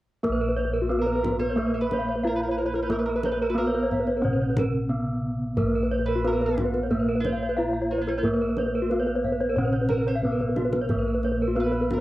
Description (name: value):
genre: Balinese gamelan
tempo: 90 BPM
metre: 4/4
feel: straight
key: Bb pelog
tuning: A4 = 438 Hz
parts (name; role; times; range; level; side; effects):
- gamelan-type bronze metallophone; melody; 0.2-12.0 s; Bb3 to F4-45c; -28 LUFS; equal; cassette tape
- gamelan-type bronze metallophone; arpeggios; 0.2-12.0 s; Gb4-40c to F5-45c; -28 LUFS; left 1 dB; cassette tape
- gamelan-type bossed gongs; bass; 0.2-12.0 s; Bb1 to Bb4; -30 LUFS; left 1 dB; none
- kendang; percussion; 0.2-12.0 s; none; -33 LUFS; equal; none
- gamelan-type bronze metallophone; accompaniment; 0.3-12.0 s; C3+50c to Bb3; -34 LUFS; right 2 dB; none
- gamelan-type bronze metallophone; arpeggios; 0.3-12.0 s; Gb4-40c to F5-45c; -32 LUFS; right 4 dB; cassette tape
- mandolin; second line; 1.0-12.0 s; C4+50c to C5+50c; -34 LUFS; right 3 dB; cassette tape
room: light reverb, small room ambience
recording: home recording on cassette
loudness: -22 LUFS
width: side -16 dB against mid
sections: 0.2-12.0 A section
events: break 4.6-5.6; drum fill 10.2-10.9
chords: none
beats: | 0.24 0.90 1.57 2.24 | 2.90 3.57 4.24 4.90 | 5.57 6.24 6.90 7.57 | 8.24 8.90 9.57 10.24 | 10.90 11.57